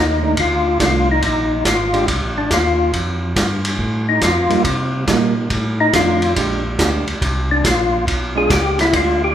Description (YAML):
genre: soul jazz organ trio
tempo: 140 BPM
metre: 4/4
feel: swing 66% on 8ths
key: unclear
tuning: A4 = 441 Hz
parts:
  - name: percussive tonewheel organ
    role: melody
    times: 0.0-9.3 s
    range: D4 to G#4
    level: -17 LUFS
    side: left 2 dB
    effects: slow rotary speaker, chorus vibrato
  - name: tonewheel organ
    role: bass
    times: 0.0-9.3 s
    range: Ab1 to C3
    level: -21 LUFS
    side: right 1 dB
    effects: overdrive, chorus vibrato
  - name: hollow-body jazz guitar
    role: accompaniment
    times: 0.2-9.2 s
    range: Eb3 to G4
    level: -23 LUFS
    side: right 5 dB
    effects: none
  - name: vintage drum kit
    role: drums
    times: 0.4-9.1 s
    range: hi-hat, kick drum, ride cymbal, snare drum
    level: -20 LUFS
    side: equal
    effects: none
room: wet recital hall reverb, RT60 1.6 s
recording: recorded in a church or concert hall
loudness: -14 LUFS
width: side -10 dB against mid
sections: 0.0-9.3 A section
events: tonewheel organ solo 0.0-9.3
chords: 0.0 F6; 1.2 Bb7sus2; 2.9 Fadd9; 4.6 Cm7; 5.5 F6; 6.4 Bb13; 8.1 Bdim7